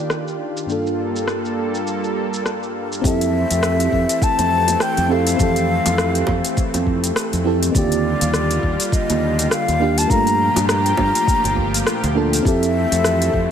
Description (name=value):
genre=sunset chillout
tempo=102 BPM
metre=4/4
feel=swing 58% on 16ths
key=F major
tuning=A4 = 440 Hz
part: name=mellow FM electric piano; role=accompaniment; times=0.0-13.5 s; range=G2 to A4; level=-22 LUFS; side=right 2 dB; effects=chorus, auto-pan, tape echo
part: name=lush unison pad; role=sustained chords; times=0.0-13.5 s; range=Bb2 to A4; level=-25 LUFS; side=equal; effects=chorus
part: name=smooth R&B drum kit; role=drums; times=0.1-13.3 s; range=hi-hat, rim click, shaker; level=-24 LUFS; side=left 1 dB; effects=overdrive, low-pass filter on perc, small room ambience, low-pass filter on snare, low-pass filter on hats
part: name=modern bright fingered electric bass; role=bass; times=3.0-13.5 s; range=G1 to G2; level=-21 LUFS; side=equal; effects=none
part: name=electronic kick drum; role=drums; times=3.0-13.5 s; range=none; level=-21 LUFS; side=equal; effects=overdrive, small room ambience
part: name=wooden flute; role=melody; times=3.1-13.5 s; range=D5 to Bb5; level=-21 LUFS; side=left 3 dB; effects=ping-pong delay
part: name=bongos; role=percussion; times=4.4-11.5 s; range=none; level=-28 LUFS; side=right 3 dB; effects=none
room=light reverb, digital ambience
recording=none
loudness=-16 LUFS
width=side -8 dB against mid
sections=0.0-3.0 A section; 3.0-13.5 B section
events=filter sweep on analog synth pad 0.0-3.0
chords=0.0 Ebmaj9; 0.7 Gm9; 3.0 Fmaj7; 7.7 Ebmaj9; 10.1 Gm9; 12.5 Fmaj7